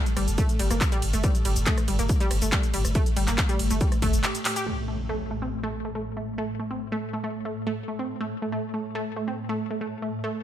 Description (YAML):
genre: driving peak-time techno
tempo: 140 BPM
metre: 4/4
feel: straight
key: unclear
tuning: A4 = 438 Hz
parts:
  - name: swarming drone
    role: drone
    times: 0.0-10.4 s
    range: A2 to A3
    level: -33 LUFS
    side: equal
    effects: built-in reverb, sidechain pumping
  - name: techno drum kit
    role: drums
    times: 0.1-4.6 s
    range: handclaps, hi-hat, ride cymbal, rim click, shaker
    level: -30 LUFS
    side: equal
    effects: sidechain pumping on hats, sidechain pumping on perc, sidechain pumping on cymbals
  - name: analog pluck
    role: riff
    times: 0.2-10.3 s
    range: G3 to G4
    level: -30 LUFS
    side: right 1 dB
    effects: chorus, sidechain pumping, ping-pong delay
  - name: saturated sub bass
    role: bass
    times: 0.2-4.2 s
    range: G1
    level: -26 LUFS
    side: equal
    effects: overdrive, sidechain pumping, low-pass filter
  - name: electronic kick drum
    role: drums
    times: 0.4-4.1 s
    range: none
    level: -24 LUFS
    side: equal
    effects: none
  - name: impact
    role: sound effects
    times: 4.7-6.4 s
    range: none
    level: -35 LUFS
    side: equal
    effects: none
room: light reverb, digital ambience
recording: none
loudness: -24 LUFS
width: side -11 dB against mid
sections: 0.0-4.7 A section; 4.7-10.4 B section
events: drop 0.0-4.7; break 4.2-4.7; drum fill 4.5; band accent 4.5; impact 4.7-6.4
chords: none